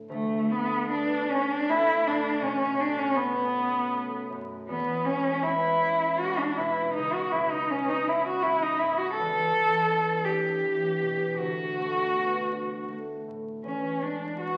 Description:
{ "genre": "classical, impressionist duo for cello and harp", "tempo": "80 BPM", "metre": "3/4", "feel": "rubato", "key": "D lydian", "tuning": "A4 = 440 Hz", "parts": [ { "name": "concert harp", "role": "accompaniment", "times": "0.0-14.6 s", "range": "B1 to F#4", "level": "-36 LUFS", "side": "equal", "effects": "none" }, { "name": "rich cello", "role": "melody", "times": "0.1-14.6 s", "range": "A3 to A4", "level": "-27 LUFS", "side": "equal", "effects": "none" } ], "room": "wet recital hall reverb, RT60 1.4 s", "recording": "very old 78 rpm record, vinyl crackle", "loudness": "-27 LUFS", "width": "mono", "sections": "0.1-14.6 A section", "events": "none", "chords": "0.1 D6; 2.4 Bm9; 4.7 E6; 7.0 C#7sus4; 9.2 Em7; 11.4 D6; 13.6 E6", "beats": "| 0.09 0.89 1.67 | 2.42 3.17 3.94 | 4.69 5.44 6.21 | 6.96 7.71 8.45 | 9.17 9.89 10.63 | 11.38 12.14 12.88 | 13.63 14.39" }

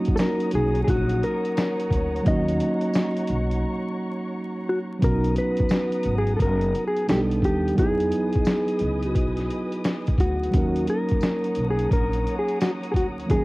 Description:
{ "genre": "lo-fi hip hop", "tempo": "87 BPM", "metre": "4/4", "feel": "swing 65% on 16ths", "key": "Eb phrygian", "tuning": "A4 = 440 Hz", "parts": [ { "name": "mellow tine electric piano", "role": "accompaniment", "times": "0.0-13.4 s", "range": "F3 to Bb4", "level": "-26 LUFS", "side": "right 1 dB", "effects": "low-pass filter, cassette tape" }, { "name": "warm studio string section", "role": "sustained chords", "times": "0.0-13.4 s", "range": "B3 to Eb6", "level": "-37 LUFS", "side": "equal", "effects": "low-pass filter, cassette tape" }, { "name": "boom bap sampler-style drum kit", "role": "drums", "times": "0.0-13.4 s", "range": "hi-hat, kick drum, snare drum", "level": "-24 LUFS", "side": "equal", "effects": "cassette tape" }, { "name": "mellow electric guitar", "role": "melody", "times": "0.2-13.4 s", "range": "Gb4 to Eb5", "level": "-26 LUFS", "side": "left 1 dB", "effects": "harmonic tremolo, low-pass filter" }, { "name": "tambourine", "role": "percussion", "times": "0.2-12.8 s", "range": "none", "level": "-48 LUFS", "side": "left 3 dB", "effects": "none" }, { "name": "upright bass", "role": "bass", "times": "0.5-13.4 s", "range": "F#1 to E2", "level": "-26 LUFS", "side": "equal", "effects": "none" } ], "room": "studio ambience", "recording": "home recording on cassette, vinyl crackle", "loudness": "-21 LUFS", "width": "side -21 dB against mid", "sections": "0.0-5.0 A section; 5.0-13.4 B section", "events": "break 3.6-5.0", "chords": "0.0 Ebm7; 5.0 Bmaj7; 7.1 B7alt; 7.8 Emaj7; 10.5 Ebm7", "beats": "0.19 0.88 1.57 | 2.26 2.95 3.64 4.33 | 5.02 5.71 6.40 7.09 | 7.78 8.47 9.16 9.85 | 10.54 11.23 11.92 12.61 | 13.29" }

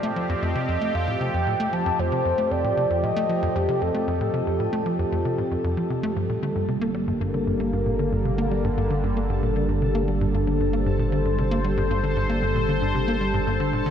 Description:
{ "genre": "ambient, sequencer-driven space music", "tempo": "115 BPM", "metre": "4/4", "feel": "straight", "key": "G minor", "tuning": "A4 = 440 Hz", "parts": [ { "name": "mellow horn-like synth lead", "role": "melody", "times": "0.0-5.6 s", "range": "G4 to A5", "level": "-28 LUFS", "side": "left 1 dB", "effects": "chorus, phaser, shimmer reverb, ping-pong delay" }, { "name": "sweeping resonant pad", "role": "sustained chords", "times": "0.0-13.9 s", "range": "D3 to C5", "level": "-26 LUFS", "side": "equal", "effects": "chorus, shimmer reverb" }, { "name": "tight sequencer bass", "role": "riff", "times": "0.0-13.9 s", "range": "F2 to Bb3", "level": "-26 LUFS", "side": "equal", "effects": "ping-pong delay" }, { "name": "warm sub bass", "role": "bass", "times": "6.2-13.9 s", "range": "G1", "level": "-28 LUFS", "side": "equal", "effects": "none" }, { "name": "bubbling stepped-filter texture", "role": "texture", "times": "6.2-13.9 s", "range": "A4 to A5", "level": "-39 LUFS", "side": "right 2 dB", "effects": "chorus, built-in reverb, shimmer reverb" } ], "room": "wet huge ambient reverb, RT60 8.3 s", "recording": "dreamy mix soaked in reverb, cassette tape", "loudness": "-21 LUFS", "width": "side -8 dB against mid", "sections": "0.0-6.2 A section; 6.2-13.9 A section", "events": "fade-in on synth texture 6.2-13.9", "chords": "0.0 F; 6.2 Gm", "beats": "0.42 0.95 1.47 | 1.99 2.51 3.03 3.56 | 4.08 4.60 5.12 5.64 | 6.16 6.68 7.21 7.73 | 8.25 8.77 9.29 9.82 | 10.34 10.86 11.38 11.90 | 12.42 12.95 13.47" }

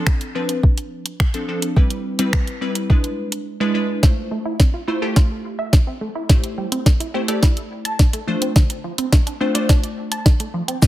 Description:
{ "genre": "dance-pop", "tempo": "106 BPM", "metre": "4/4", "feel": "straight", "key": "unclear", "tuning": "A4 = 441 Hz", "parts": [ { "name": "glassy wavetable pluck", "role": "accompaniment", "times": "0.0-10.9 s", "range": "F3 to D5", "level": "-23 LUFS", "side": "equal", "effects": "chorus, sidechain pumping" }, { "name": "smooth R&B drum kit", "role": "drums", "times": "0.1-10.9 s", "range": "finger snaps, hi-hat, kick drum, shaker, snare drum", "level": "-14 LUFS", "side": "equal", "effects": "soft clipping on snare" }, { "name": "tight sequenced synth", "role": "arpeggios", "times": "4.0-10.9 s", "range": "A2 to A5", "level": "-27 LUFS", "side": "right 2 dB", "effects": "chorus, sidechain pumping, dub echo" } ], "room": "light reverb, digital ambience", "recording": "dense, heavily limited modern master", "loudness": "-17 LUFS", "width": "side -14 dB against mid", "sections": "0.0-4.0 A section; 4.0-10.9 B section", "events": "silent gap 3.5-4.0; build-up 4.0-10.9; drum fill 4.0-10.9", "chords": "0.0 Dm7; 1.8 Cmaj7; 2.9 E7; 4.0 Fmaj7; 6.3 Am7; 8.3 Dm7", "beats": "0.07 0.64 1.20 | 1.77 2.33 2.90 3.46 | 4.03 4.60 5.16 5.73 | 6.29 6.86 7.43 7.99 | 8.56 9.12 9.69 10.26 | 10.82" }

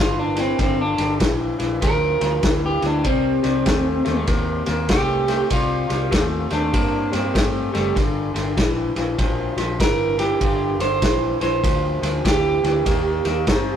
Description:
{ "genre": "electric blues shuffle", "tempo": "98 BPM", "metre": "4/4", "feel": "swing 63% on 8ths", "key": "G minor", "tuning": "A4 = 445 Hz", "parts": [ { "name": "electric guitar through a small old amp", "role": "melody", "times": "0.0-13.8 s", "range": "G3 to C5", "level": "-22 LUFS", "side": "right 3 dB", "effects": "none" }, { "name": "electric guitar through a small old amp", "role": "riff", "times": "0.0-13.8 s", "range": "G2 to C4", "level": "-24 LUFS", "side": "left 3 dB", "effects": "spring reverb" }, { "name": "vintage muted fingered electric bass", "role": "bass", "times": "0.0-13.8 s", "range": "F#1 to G2", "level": "-27 LUFS", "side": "equal", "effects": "none" }, { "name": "vintage drum kit", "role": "drums", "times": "0.4-13.7 s", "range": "kick drum, ride cymbal, snare drum", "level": "-22 LUFS", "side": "equal", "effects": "none" } ], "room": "light reverb", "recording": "rough rehearsal-room recording, warm saturation", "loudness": "-18 LUFS", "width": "side -9 dB against mid", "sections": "0.0-13.8 A section", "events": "clean electric guitar solo 0.0-13.8", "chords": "0.0 Gm7; 3.0 Cm7; 8.0 Gm7; 12.9 Eb", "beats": "| 0.59 1.21 1.82 2.44 | 3.05 3.66 4.28 4.89 | 5.51 6.12 6.73 7.35 | 7.96 8.57 9.19 9.80 | 10.41 11.03 11.64 12.25 | 12.86 13.48" }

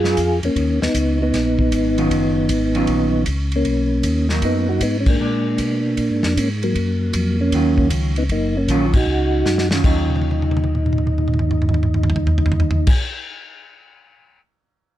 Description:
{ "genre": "soul jazz organ trio", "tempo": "155 BPM", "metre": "4/4", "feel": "swing 66% on 8ths", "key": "Eb minor", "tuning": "A4 = 441 Hz", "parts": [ { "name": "percussive tonewheel organ", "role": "melody", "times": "0.0-12.9 s", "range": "Gb3 to Ab4", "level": "-20 LUFS", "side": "equal", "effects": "slow rotary speaker, chorus vibrato" }, { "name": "hollow-body jazz guitar", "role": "accompaniment", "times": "0.0-12.9 s", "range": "Eb3 to F4", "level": "-24 LUFS", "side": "right 2 dB", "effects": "none" }, { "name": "tonewheel organ", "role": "bass", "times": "0.0-12.9 s", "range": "Gb1 to Cb3", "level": "-21 LUFS", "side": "equal", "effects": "overdrive, chorus vibrato, slow rotary speaker" }, { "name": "warm soul drum kit", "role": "drums", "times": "0.0-14.4 s", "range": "crash cymbal, hi-hat, kick drum, ride cymbal, snare drum, toms", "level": "-22 LUFS", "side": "equal", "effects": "none" } ], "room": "light reverb", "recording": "none", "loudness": "-16 LUFS", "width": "side -13 dB against mid", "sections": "0.0-9.8 A section; 9.8-12.9 B section", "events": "band accent 5.0, 8.9; drum fill 9.5-9.8, 10.0-12.8", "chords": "0.0 Abm7; 0.6 Ebm9; 3.7 Bmaj7; 5.2 Bb7b9; 6.8 Ebm9", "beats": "0.18 | 0.56 0.95 1.34 1.72 | 2.11 2.50 2.88 3.27 | 3.66 4.04 4.43 4.82 | 5.20 5.59 5.98 6.37 | 6.75 7.14 7.53 7.91 | 8.30 8.69 9.07 9.46 | 9.85 10.23 10.62 11.01 | 11.40 11.78 12.17 12.56" }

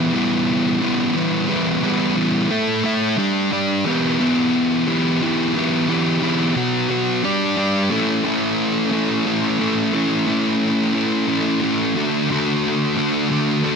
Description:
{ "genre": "rock", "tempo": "59 BPM (dotted quarters)", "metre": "6/8", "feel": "straight", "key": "E dorian", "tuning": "A4 = 440 Hz", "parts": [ { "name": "thick fuzz guitar", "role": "solo", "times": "0.0-13.8 s", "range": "B2 to E5", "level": "-17 LUFS", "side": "equal", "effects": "distortion" } ], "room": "moderate lush hall reverb, RT60 2.0 s", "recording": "none", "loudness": "-17 LUFS", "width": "side -5 dB against mid", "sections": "0.0-13.8 A section", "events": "none", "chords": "0.0 Em; 2.5 A5; 3.2 G5; 3.9 Em; 6.6 B5; 7.2 G5; 7.9 A; 12.0 D", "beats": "0.82 | 1.83 2.85 | 3.86 4.87 | 5.89 6.90 | 7.91 8.92 | 9.93 10.95 | 11.96 12.97" }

